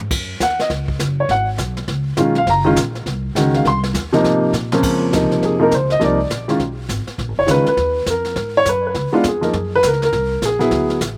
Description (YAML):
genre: jazz piano trio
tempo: 204 BPM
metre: 4/4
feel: swing 63% on 8ths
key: Db major from 4.8 s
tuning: A4 = 440 Hz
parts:
  - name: upright bass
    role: bass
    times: 0.0-11.2 s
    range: F1 to Bb2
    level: -26 LUFS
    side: equal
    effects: none
  - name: jazz brush drum kit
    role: drums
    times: 0.1-11.2 s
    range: brushed snare drum, crash cymbal, hi-hat, kick drum, snare drum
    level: -28 LUFS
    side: equal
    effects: none
  - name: warm upright piano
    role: melody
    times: 0.4-11.0 s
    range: Db2 to C6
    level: -18 LUFS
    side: equal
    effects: none
room: little or no reverb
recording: recorded outdoors, with no room sound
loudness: -18 LUFS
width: mono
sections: 0.0-4.8 A section; 4.8-11.2 B section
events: drum fill 4.5; upright piano solo 4.8-11.2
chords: 0.1 Ebm7; 1.3 Abm; 1.9 Db9; 2.5 Gb; 3.6 Cm; 4.2 Ab69; 4.8 Dbmaj9; 6.0 Bbadd9; 6.6 Abm; 7.2 Bbm; 8.4 Gbsus24; 8.9 Db7; 9.5 Gbadd9